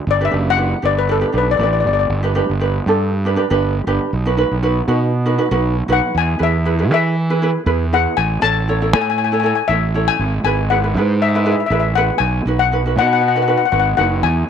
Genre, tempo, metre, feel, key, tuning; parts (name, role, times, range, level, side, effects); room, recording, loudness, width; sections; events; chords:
calypso; 119 BPM; 4/4; straight; E major from 6.1 s; A4 = 439 Hz
steel pan; melody; 0.1-2.1, 5.9-14.5 s; A4 to A5; -17 LUFS; left 9 dB
fuzz fingered electric bass; bass; 0.1-14.4 s; F#1 to E3; -18 LUFS; right 2 dB; overdrive
ukulele; accompaniment; 0.2-14.2 s; D4 to C#5; -20 LUFS; right 3 dB
light reverb, studio ambience; -14 LUFS; side -8 dB against mid
0.0-2.1 A section; 2.1-6.1 B section; 6.1-14.5 C section
steel pan solo 0.0-2.1
0.0 Gmaj7; 2.1 G; 4.1 B; 6.1 E; 8.2 A; 10.2 E/G#; 12.2 B